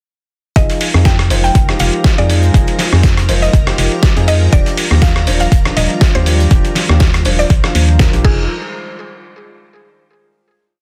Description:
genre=deep house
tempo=121 BPM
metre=4/4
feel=swing 55% on 16ths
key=F dorian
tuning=A4 = 440 Hz
part: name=mallet-like synth pluck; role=melody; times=0.6-8.4 s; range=Ab4 to G5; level=-24 LUFS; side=equal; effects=chorus, tape echo
part: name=airy breathy pad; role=sustained chords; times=0.6-8.5 s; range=Eb3 to D5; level=-29 LUFS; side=equal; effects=chorus, sidechain pumping
part: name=felt-muted upright piano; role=stabs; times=0.6-8.4 s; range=F3 to C5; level=-23 LUFS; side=equal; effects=sidechain pumping, low-pass filter, tape echo
part: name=organ-like FM bass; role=bass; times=0.6-8.5 s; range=Eb1 to F2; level=-16 LUFS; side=equal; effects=sidechain pumping
part: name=dusty soul sampler-style drum kit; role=drums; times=0.6-8.4 s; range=crash cymbal, hi-hat, rim click, snare drum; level=-20 LUFS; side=equal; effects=none
part: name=electronic kick drum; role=drums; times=0.6-8.4 s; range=none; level=-14 LUFS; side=equal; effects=none
part: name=soft brush drum kit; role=drums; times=0.6-8.2 s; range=hi-hat, snare drum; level=-31 LUFS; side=equal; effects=high-pass filter on hats, soft clipping on snare, high-pass filter on snare, high-pass filter on room
part: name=string machine, violins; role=texture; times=0.6-8.5 s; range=Bb4 to Bb5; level=-32 LUFS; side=equal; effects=none
room=small room ambience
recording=dense, heavily limited modern master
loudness=-12 LUFS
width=mono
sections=0.6-8.5 groove; 8.5-10.5 final hit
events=filter sweep on felt piano 0.6-8.5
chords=0.6 Fm7; 4.5 Ebmaj9; 8.2 Fm7; 8.5 N.C.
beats=| 0.56 1.05 1.55 2.05 | 2.54 3.04 3.54 4.03 | 4.53 5.02 5.52 6.01 | 6.51 7.01 7.50 8.00 | 8.49

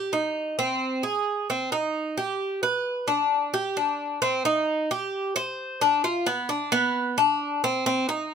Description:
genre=latin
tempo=132 BPM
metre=4/4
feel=straight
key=C minor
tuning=A4 = 439 Hz
part: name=Cuban tres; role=solo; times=0.0-8.3 s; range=B3 to C5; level=-23 LUFS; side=equal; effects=none
room=light reverb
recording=close, detailed microphones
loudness=-23 LUFS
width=side -6 dB against mid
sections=0.0-4.2 A section; 4.2-8.3 B section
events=none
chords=none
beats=0.12 | 0.58 1.03 1.49 1.94 | 2.40 2.85 3.31 3.76 | 4.22 4.67 5.13 5.58 | 6.04 6.49 6.95 7.40 | 7.86 8.31

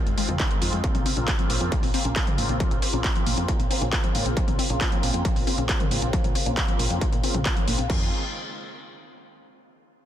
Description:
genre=uplifting trance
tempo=136 BPM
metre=4/4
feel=straight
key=F minor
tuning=A4 = 441 Hz
part: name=analog pluck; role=arpeggios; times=0.1-8.1 s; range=Eb3 to F4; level=-33 LUFS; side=left 7 dB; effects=chorus, sidechain pumping, dub echo
part: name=solid FM bass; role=bass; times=0.1-8.1 s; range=F1 to Bb2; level=-28 LUFS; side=equal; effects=sidechain pumping
part: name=techno drum kit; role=drums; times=0.1-8.0 s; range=crash cymbal, handclaps, hi-hat, toms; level=-28 LUFS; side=equal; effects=sidechain pumping on hats, sidechain pumping on toms, sidechain pumping on cymbals
part: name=filtered supersaw swell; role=sustained chords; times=0.2-8.1 s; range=Db3 to F4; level=-30 LUFS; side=equal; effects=phaser, sidechain pumping, low-pass filter
part: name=electronic kick drum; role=drums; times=0.4-8.0 s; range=none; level=-25 LUFS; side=equal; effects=distortion
room=little or no reverb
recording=dense, heavily limited modern master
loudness=-21 LUFS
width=side -11 dB against mid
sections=0.0-7.9 A section; 7.9-9.7 B section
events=filter sweep on FM bass 0.0-7.9; filter sweep on supersaw synth 0.0-7.9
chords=0.0 Fm7; 0.8 Bbmadd9; 7.9 Fm7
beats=0.40 | 0.84 1.28 1.72 2.16 | 2.60 3.04 3.48 3.93 | 4.37 4.81 5.25 5.69 | 6.13 6.57 7.01 7.46 | 7.90

